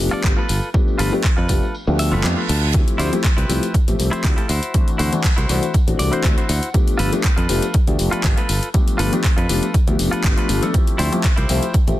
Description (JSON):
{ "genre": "filtered disco house", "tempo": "120 BPM", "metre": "4/4", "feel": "swing 53% on 16ths", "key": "unclear", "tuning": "A4 = 440 Hz", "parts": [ { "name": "dark baby grand piano", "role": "accompaniment", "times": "0.0-12.0 s", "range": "E3 to E5", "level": "-23 LUFS", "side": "left 2 dB", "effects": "phaser, sidechain pumping, low-pass filter" }, { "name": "modern bright fingered electric bass", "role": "bass", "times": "0.0-12.0 s", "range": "F1 to F2", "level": "-21 LUFS", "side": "equal", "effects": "sidechain pumping, low-pass filter" }, { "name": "direct-recorded clean electric guitar", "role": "riff", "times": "0.1-11.7 s", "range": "E4 to A5", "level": "-25 LUFS", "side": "equal", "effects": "sidechain pumping, low-pass filter" }, { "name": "tambourine", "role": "percussion", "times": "0.1-12.0 s", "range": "none", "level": "-40 LUFS", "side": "equal", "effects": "none" }, { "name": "electronic kick drum", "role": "drums", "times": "0.2-11.8 s", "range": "none", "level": "-17 LUFS", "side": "equal", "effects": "overdrive" }, { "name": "punchy analog drum machine", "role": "drums", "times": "0.2-12.0 s", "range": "handclaps, hi-hat", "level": "-26 LUFS", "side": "left 2 dB", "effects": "overdrive, sidechain pumping on hats" }, { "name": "reverse cymbal", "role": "sound effects", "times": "2.0-2.7 s", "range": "none", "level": "-28 LUFS", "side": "right 7 dB", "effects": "none" } ], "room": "little or no reverb", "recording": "dense, heavily limited modern master", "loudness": "-16 LUFS", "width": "side -15 dB against mid", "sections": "0.0-12.0 A section", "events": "kick drops out 1.7-2.7; clean electric guitar fill 1.7-2.7, 5.7-6.7; reverse cymbal 2.0-2.7", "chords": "0.0 G9; 2.7 Dm11; 4.5 D9; 6.7 G9; 10.7 Dm11 (rootless)", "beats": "0.24 | 0.74 1.24 1.74 2.24 | 2.74 3.24 3.74 4.24 | 4.74 5.24 5.74 6.24 | 6.74 7.24 7.74 8.24 | 8.74 9.24 9.74 10.24 | 10.74 11.24 11.74" }